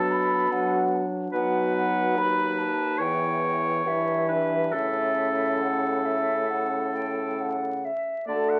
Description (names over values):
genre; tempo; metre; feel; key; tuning
classical, slow romantic movement for wind quintet; 66-75 BPM; 4/4; rubato; unclear; A4 = 440 Hz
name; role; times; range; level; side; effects
silver concert flute; melody; 0.0-8.6 s; E5 to B5; -30 LUFS; equal; none
warm oboe; second line; 0.0-8.6 s; A4 to F#5; -30 LUFS; equal; none
dark clarinet; accompaniment; 0.0-8.6 s; C#4 to F#4; -37 LUFS; equal; none
warm French horn; accompaniment; 0.0-8.6 s; C#3 to A3; -34 LUFS; equal; none
warm bassoon; bass; 0.0-8.6 s; D#2 to D3; -31 LUFS; equal; none
room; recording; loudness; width
moderate large studio reverb, RT60 1.1 s; very old 78 rpm record, vinyl crackle; -25 LUFS; mono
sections
0.0-8.3 A section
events
none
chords
0.0 Bm7; 1.3 B7; 3.0 Em7; 4.7 A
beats
0.51 | 1.34 2.17 3.00 3.86 | 4.74 5.61 6.50 7.40 | 8.28